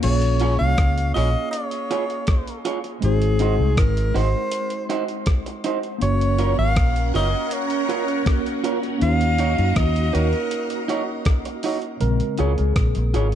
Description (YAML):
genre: lovers rock reggae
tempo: 80 BPM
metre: 4/4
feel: straight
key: Bb minor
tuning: A4 = 445 Hz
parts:
  - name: warm alto saxophone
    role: melody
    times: 0.0-10.9 s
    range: Ab4 to F5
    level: -26 LUFS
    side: equal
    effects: dub echo
  - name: tine electric piano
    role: accompaniment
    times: 0.0-13.3 s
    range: Db3 to Db5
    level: -27 LUFS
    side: left 1 dB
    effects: overdrive, medium stereo tremolo, dub echo
  - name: vintage muted fingered electric bass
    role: bass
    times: 0.0-13.3 s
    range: Gb1 to Gb2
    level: -20 LUFS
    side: equal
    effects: none
  - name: clean 12-bit digital drum machine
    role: drums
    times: 0.0-13.3 s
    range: crash cymbal, hi-hat, kick drum, rim click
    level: -23 LUFS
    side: equal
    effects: none
  - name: electric guitar through a small old amp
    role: stabs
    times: 0.4-13.3 s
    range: Eb4 to Db5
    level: -28 LUFS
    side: right 6 dB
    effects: spring reverb
  - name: phased string machine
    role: second line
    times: 6.0-12.0 s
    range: Db4 to Bb5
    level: -28 LUFS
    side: right 1 dB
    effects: ensemble chorus, phaser
room: digital ambience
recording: dark, warm production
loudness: -19 LUFS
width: side -10 dB against mid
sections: 0.0-12.0 A section; 12.0-13.3 B section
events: tine electric piano solo 12.0-13.3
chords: 0.0 Bbm7; 3.0 Ab7; 6.0 Gbmaj7; 9.0 Ebm7; 12.0 Bbm7